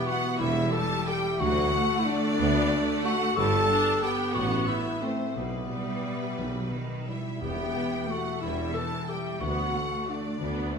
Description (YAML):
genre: classical, orchestral ballroom waltz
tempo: 164-196 BPM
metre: 3/4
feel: rubato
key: E minor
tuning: A4 = 440 Hz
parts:
  - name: rich studio violin section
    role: melody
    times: 0.0-10.8 s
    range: B4 to A5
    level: -36 LUFS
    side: left 3 dB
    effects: none
  - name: clear studio violin section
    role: second line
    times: 0.0-10.8 s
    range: B4 to A5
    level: -35 LUFS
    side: equal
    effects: none
  - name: dark clarinet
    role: second line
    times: 0.0-10.8 s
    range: B3 to A4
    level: -30 LUFS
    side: left 2 dB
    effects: none
  - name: clear studio viola section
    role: accompaniment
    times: 0.0-10.8 s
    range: E3 to D4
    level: -33 LUFS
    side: right 2 dB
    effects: none
  - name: concert harp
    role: arpeggios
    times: 0.0-10.8 s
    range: G2 to B4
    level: -35 LUFS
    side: left 7 dB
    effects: none
  - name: clear studio cello section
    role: bass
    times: 0.4-10.7 s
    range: D2 to G3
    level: -36 LUFS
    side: right 2 dB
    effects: none
  - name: mellow tuba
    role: bass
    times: 0.4-10.7 s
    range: E1 to D2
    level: -36 LUFS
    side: right 4 dB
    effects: none
  - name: rich studio double bass section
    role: bass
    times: 0.4-10.7 s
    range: E1 to D2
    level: -35 LUFS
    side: right 3 dB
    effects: none
  - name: timpani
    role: percussion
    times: 6.4-7.9 s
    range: E2 to B2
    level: -43 LUFS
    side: equal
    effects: none
room: wet recital hall reverb, RT60 1.3 s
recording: minimal, uncompressed stereo recording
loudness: -25 LUFS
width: side -6 dB against mid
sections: 0.0-10.8 A section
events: none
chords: 0.0 Em; 1.4 D; 3.4 G; 4.3 Am; 5.3 Em/B; 6.4 B; 7.4 Em; 9.4 D